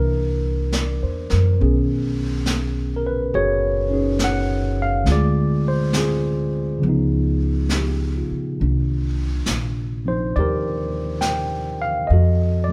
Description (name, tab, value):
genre	jazz ballad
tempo	69 BPM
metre	4/4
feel	swing 67% on 8ths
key	unclear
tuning	A4 = 440 Hz
part	tine electric piano	accompaniment	0.0-12.7 s	C3 to G5	-24 LUFS	equal	overdrive
part	upright bass	bass	0.0-12.7 s	F#1 to Gb2	-24 LUFS	equal	none
part	vintage brush drum kit	drums	0.7-12.7 s	brushed snare drum, hi-hat, snare drum	-30 LUFS	equal	none
room	moderate large studio reverb, RT60 1.2 s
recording	band playing live in one room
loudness	-21 LUFS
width	mono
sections	0.0-12.7 A section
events	none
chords	0.0 C9; 1.6 B69; 5.1 Dm7b5; 6.8 Db9; 8.6 Cm9; 12.1 F7b9